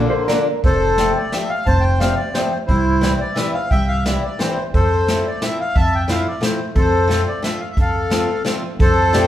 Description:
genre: musette waltz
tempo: 176 BPM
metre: 3/4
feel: straight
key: F major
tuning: A4 = 441 Hz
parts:
  - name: accordion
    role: melody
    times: 0.0-9.3 s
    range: D3 to A5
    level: -19 LUFS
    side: left 1 dB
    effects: none
  - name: picked old ladder-braced acoustic guitar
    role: accompaniment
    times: 0.0-9.3 s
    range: D3 to G4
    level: -23 LUFS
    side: left 2 dB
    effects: none
  - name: upright bass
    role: bass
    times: 0.0-9.2 s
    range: F1 to F2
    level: -20 LUFS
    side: equal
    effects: none
  - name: hollow-body jazz guitar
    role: second line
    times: 0.1-0.6 s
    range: Bb4 to C5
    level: -24 LUFS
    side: right 4 dB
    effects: none
  - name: jazz brush drum kit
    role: drums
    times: 0.3-9.2 s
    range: hi-hat, kick drum, snare drum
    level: -21 LUFS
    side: equal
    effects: none
room: moderate large studio reverb, RT60 1.2 s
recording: band playing live in one room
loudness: -15 LUFS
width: side -12 dB against mid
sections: 0.6-8.8 A section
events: none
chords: 0.0 Bb; 0.6 Fadd9; 2.7 C; 4.7 Fmaj7; 6.8 F

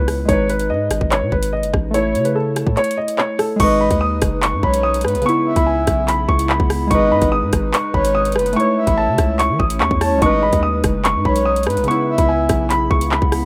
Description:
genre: hip hop, drill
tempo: 145 BPM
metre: 4/4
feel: half-time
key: G# phrygian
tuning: A4 = 438 Hz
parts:
  - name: dark concert grand piano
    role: melody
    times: 0.0-13.5 s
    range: A4 to D#6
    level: -23 LUFS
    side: equal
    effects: none
  - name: warbly lo-fi synth keys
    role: accompaniment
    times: 0.0-13.5 s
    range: C#3 to C#5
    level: -24 LUFS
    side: equal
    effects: chorus
  - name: long sustained 808-style bass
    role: bass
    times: 0.0-13.5 s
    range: F#1 to E3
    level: -24 LUFS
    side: equal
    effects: none
  - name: drill drum kit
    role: drums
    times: 0.1-13.4 s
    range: crash cymbal, handclaps, hi-hat, kick drum, rim click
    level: -22 LUFS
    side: equal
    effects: none
  - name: breathy flute-like synth lead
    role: second line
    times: 3.6-12.7 s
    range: B4 to E5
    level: -23 LUFS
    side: equal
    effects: chorus, digital delay
  - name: warbly tape-like pad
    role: sustained chords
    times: 4.2-13.5 s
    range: C#3 to B4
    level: -30 LUFS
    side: equal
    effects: chorus, built-in reverb, phaser
room: little or no reverb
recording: rough home demo mix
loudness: -17 LUFS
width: mono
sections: 0.0-3.6 A section; 3.6-13.5 B section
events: kick muted 2.8-3.6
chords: 0.3 G#m; 1.9 A; 3.6 G#m; 5.3 C#m7; 6.9 G#m; 8.6 A; 10.2 G#m; 11.9 C#m7

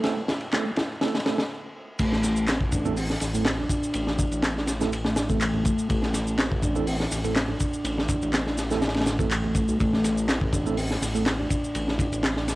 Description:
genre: breakbeat, breaks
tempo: 123 BPM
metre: 4/4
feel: swing 53% on 16ths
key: A minor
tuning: A4 = 440 Hz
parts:
  - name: tine electric piano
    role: stabs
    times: 0.0-11.2 s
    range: A3 to A4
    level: -32 LUFS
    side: right 5 dB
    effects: medium stereo tremolo, vintage 12-bit sampler grit, tape echo
  - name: dark detuned saw bass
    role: bass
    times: 0.0-12.6 s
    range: A1 to B1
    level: -30 LUFS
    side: equal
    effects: tube saturation, high-pass filter
  - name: crunchy breakbeat drum kit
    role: drums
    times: 0.0-12.6 s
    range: crash cymbal, hi-hat, kick drum, ride cymbal, snare drum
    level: -26 LUFS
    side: equal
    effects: cassette tape
  - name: mellow tonewheel organ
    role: riff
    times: 0.2-12.5 s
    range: A3 to E4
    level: -28 LUFS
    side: equal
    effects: slow rotary speaker, tube saturation, vintage 12-bit sampler grit, tape echo
  - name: electronic handclaps and shaker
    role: drums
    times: 0.5-12.6 s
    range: none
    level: -32 LUFS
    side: equal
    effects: cassette tape
  - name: congas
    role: percussion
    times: 2.1-12.1 s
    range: none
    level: -39 LUFS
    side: right 5 dB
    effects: none
room: light reverb, small room ambience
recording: home recording on cassette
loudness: -23 LUFS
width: side -19 dB against mid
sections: 0.0-2.0 A section; 2.0-12.6 B section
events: build-up 0.0-2.0; drum fill 0.0-1.5; filter sweep on tonewheel organ 0.0-2.0; stop 1.5-2.0; drop 2.0-12.6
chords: 0.0 Am

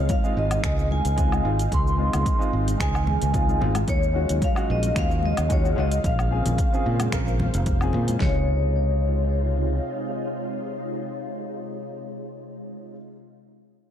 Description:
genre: sunset chillout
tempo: 111 BPM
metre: 4/4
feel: swing 54% on 16ths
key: Db major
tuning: A4 = 440 Hz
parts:
  - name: vibraphone with medium mallets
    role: melody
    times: 0.0-12.9 s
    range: Db5 to C6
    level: -29 LUFS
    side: left 2 dB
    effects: vintage 12-bit sampler grit, digital delay
  - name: dark baby grand piano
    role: accompaniment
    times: 0.0-13.0 s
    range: C3 to Bb4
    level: -31 LUFS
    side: moving between left 7 dB and right 5 dB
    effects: auto-pan
  - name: soft string machine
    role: sustained chords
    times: 0.0-12.9 s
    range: C3 to F5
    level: -32 LUFS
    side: right 1 dB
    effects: phaser, ensemble chorus
  - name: fingered electric bass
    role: bass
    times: 0.0-9.8 s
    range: F1 to Bb2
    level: -23 LUFS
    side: equal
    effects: tube saturation
  - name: deep house drum kit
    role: drums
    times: 0.1-8.3 s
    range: kick drum, snare drum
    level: -25 LUFS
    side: equal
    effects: overdrive, studio reverb
  - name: deep house drum kit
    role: drums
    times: 0.1-8.2 s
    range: finger snaps, hi-hat, shaker, woodblock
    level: -34 LUFS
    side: left 1 dB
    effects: studio reverb
  - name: congas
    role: percussion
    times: 0.1-8.2 s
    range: none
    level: -33 LUFS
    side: left 4 dB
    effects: none
room: light reverb, digital ambience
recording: dark, warm production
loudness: -21 LUFS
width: side -10 dB against mid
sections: 0.0-8.2 A section; 8.2-12.5 B section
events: none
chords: 0.0 Dbmaj9; 3.9 Ebm11; 6.0 Bbm9; 8.2 Dbmaj9

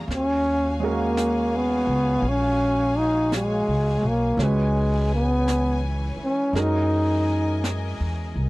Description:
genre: jazz ballad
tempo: 56 BPM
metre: 4/4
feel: swing 66% on 8ths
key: Eb minor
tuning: A4 = 441 Hz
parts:
  - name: warm baby grand piano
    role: accompaniment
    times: 0.0-8.5 s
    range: Ab3 to Cb5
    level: -31 LUFS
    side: right 4 dB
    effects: none
  - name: warm studio string section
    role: sustained chords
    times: 0.0-8.5 s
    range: Fb3 to Ab5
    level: -34 LUFS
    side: left 2 dB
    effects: none
  - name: upright bass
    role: bass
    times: 0.0-8.5 s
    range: Bb1 to Gb2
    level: -25 LUFS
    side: equal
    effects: none
  - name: jazz brush drum kit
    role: drums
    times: 0.1-8.5 s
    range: brushed snare drum, hi-hat, snare drum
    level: -36 LUFS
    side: right 1 dB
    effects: none
  - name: warm trombone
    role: melody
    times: 0.2-7.7 s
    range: Ab3 to Eb4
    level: -22 LUFS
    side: equal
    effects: none
room: little or no reverb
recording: dry, close 1970s-style studio recording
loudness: -20 LUFS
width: side -20 dB against mid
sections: 0.0-8.5 A section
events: none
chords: 0.1 Ebm11; 4.4 Dbm7; 6.5 Gb13

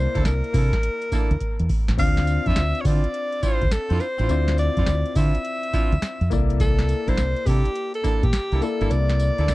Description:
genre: R&B, new jack swing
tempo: 104 BPM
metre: 4/4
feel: swing 65% on 16ths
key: unclear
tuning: A4 = 440 Hz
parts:
  - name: bright alto saxophone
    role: melody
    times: 0.0-9.5 s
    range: G4 to F5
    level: -27 LUFS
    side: equal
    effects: none
  - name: clear concert grand piano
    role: accompaniment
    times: 0.0-9.5 s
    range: Bb3 to A5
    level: -31 LUFS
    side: left 8 dB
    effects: none
  - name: deep dub fingered electric bass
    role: bass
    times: 0.0-9.5 s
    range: G1 to D3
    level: -22 LUFS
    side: equal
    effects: none
  - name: warm horn section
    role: stabs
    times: 0.1-9.5 s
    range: Bb3 to A4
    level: -31 LUFS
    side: right 5 dB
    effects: none
  - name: booming analog drum machine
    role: drums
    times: 0.2-9.5 s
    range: crash cymbal, hi-hat, kick drum, snare drum, tambourine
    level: -22 LUFS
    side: equal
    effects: none
room: little or no reverb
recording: dry, close 1970s-style studio recording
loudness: -19 LUFS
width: side -18 dB against mid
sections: 0.0-9.5 A section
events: drum fill 1.4-2.0; kick muted 8.9-9.5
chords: 0.0 C13; 2.0 Dm9; 6.3 C13

